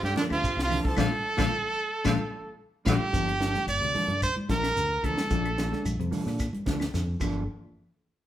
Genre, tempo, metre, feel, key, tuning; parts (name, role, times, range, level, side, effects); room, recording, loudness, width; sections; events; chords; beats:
afrobeat; 111 BPM; 4/4; straight; G minor; A4 = 435 Hz
brilliant trumpet; melody; 0.0-5.9 s; D4 to D5; -28 LUFS; right 2 dB
clear fiddle; second line; 0.0-3.0 s; D5 to A5; -38 LUFS; left 2 dB
raspy tenor saxophone; second line; 0.0-2.9 s; Bb2 to F3; -36 LUFS; right 2 dB
fingered electric bass; bass; 0.0-7.5 s; G1 to Bb2; -32 LUFS; equal
tight funk drum kit; drums; 0.0-7.3 s; crash cymbal, hi-hat, kick drum, ride cymbal, snare drum; -32 LUFS; equal
congas; percussion; 0.0-7.3 s; -36 LUFS; equal
mellow electric guitar; stabs; 0.1-7.4 s; F3 to A4; -35 LUFS; right 3 dB
clean electric guitar; arpeggios; 0.2-7.4 s; G2 to F3; -33 LUFS; left 6 dB
shekere; percussion; 0.2-7.3 s; -38 LUFS; right 1 dB
claves; percussion; 0.3-7.3 s; -45 LUFS; left 5 dB
moderate large studio reverb, RT60 0.9 s; band playing live in one room; -25 LUFS; side -12 dB against mid
0.0-3.1 A section; 3.1-7.5 B section
band accent 1.0-3.1; drum fill 2.6-3.1, 6.9-7.5
0.0 Gm9; 1.0 Bbmaj7; 3.1 Gm9; 5.3 Bbmaj7; 7.2 Gm9; 7.5 N.C.
0.44 | 0.98 1.52 2.06 2.60 | 3.14 3.68 4.22 4.77 | 5.31 5.85 6.39 6.93